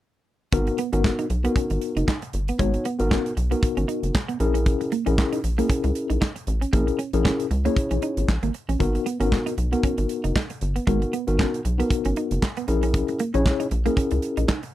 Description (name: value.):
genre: early-eighties boogie funk.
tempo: 116 BPM.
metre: 4/4.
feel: swing 56% on 16ths.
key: G# minor.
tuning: A4 = 435 Hz.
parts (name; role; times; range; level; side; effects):
mellow tine electric piano; accompaniment; 0.5-14.5 s; B3 to C#5; -25 LUFS; left 4 dB; medium stereo tremolo.
rubbery square bass; bass; 0.5-14.5 s; F#1 to C#2; -24 LUFS; equal; none.
modern studio drum kit; drums; 0.5-14.7 s; handclaps, hi-hat, kick drum, snare drum; -26 LUFS; equal; none.
clean electric guitar; riff; 0.7-14.7 s; G#3 to D#4; -28 LUFS; right 5 dB; analog chorus.
room: little or no reverb.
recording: dry, close 1970s-style studio recording.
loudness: -21 LUFS.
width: side -14 dB against mid.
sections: 0.5-14.7 A section.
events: none.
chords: 0.5 G#m7; 4.4 A#m7b5; 8.8 G#m7; 12.7 A#m7b5.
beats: | 0.53 1.04 1.56 2.08 | 2.60 3.11 3.63 4.15 | 4.66 5.18 5.70 6.21 | 6.73 7.25 7.77 8.28 | 8.80 9.32 9.84 10.35 | 10.87 11.39 11.90 12.42 | 12.94 13.46 13.97 14.49.